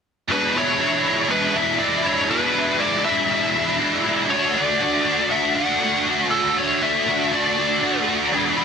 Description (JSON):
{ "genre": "rock", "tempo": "120 BPM", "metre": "4/4", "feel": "straight", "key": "D lydian", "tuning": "A4 = 440 Hz", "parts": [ { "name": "nasal lead guitar with a parked wah", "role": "melody", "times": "0.3-8.0 s", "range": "A4 to F#5", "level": "-23 LUFS", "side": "left 1 dB", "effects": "overdrive, digital delay" }, { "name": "biting overdriven guitar", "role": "riff", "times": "0.3-8.6 s", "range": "E2 to F#4", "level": "-19 LUFS", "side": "equal", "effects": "ensemble chorus" } ], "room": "light reverb, digital ambience", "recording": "dense, heavily limited modern master", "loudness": "-18 LUFS", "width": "side -6 dB against mid", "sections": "0.3-8.3 A section", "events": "none", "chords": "0.3 E7; 4.3 D", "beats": "| 0.30 0.80 1.30 1.80 | 2.30 2.80 3.31 3.81 | 4.31 4.81 5.31 5.81 | 6.31 6.81 7.32 7.82 | 8.32" }